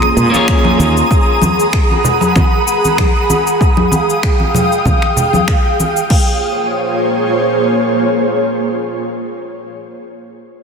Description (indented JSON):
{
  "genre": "sunset chillout",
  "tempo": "96 BPM",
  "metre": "4/4",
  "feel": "swing 54% on 16ths",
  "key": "Bb minor",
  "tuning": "A4 = 441 Hz",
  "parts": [
    { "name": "electric guitar at the edge of break-up", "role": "accompaniment", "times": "0.0-1.1 s", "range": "Bb3 to Db5", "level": "-18 LUFS", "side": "right 1 dB", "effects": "auto-pan, tape echo" },
    { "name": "ethereal airy pad", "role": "sustained chords", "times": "0.0-9.4 s", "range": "Bb3 to Eb6", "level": "-15 LUFS", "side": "equal", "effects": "ensemble chorus, built-in reverb, tremolo" },
    { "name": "deep house drum kit", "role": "drums", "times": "0.0-6.2 s", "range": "cabasa, congas, crash cymbal, finger snaps", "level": "-19 LUFS", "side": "left 4 dB", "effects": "overdrive, studio reverb, soft clipping on snare" },
    { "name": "twinkling granular texture", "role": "texture", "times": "0.0-6.1 s", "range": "Eb6", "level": "-21 LUFS", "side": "right 3 dB", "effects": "built-in reverb" },
    { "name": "fretless electric bass", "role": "bass", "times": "0.2-1.0 s", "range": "Eb2 to Bb2", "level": "-13 LUFS", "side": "equal", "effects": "none" },
    { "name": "congas", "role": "percussion", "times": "0.2-5.9 s", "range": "none", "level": "-20 LUFS", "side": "right 1 dB", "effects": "none" },
    { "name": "electronic kick drum", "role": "drums", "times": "0.5-6.2 s", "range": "none", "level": "-14 LUFS", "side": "equal", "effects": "overdrive, studio reverb" }
  ],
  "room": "moderate lush hall reverb, RT60 2.7 s",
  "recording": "dense, heavily limited modern master",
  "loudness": "-11 LUFS",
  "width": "side -6 dB against mid",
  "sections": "0.0-6.1 A section; 6.1-8.6 B section",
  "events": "none",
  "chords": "0.0 Bbm9; 1.1 Abm9; 3.3 Fm9; 6.1 Bbm9"
}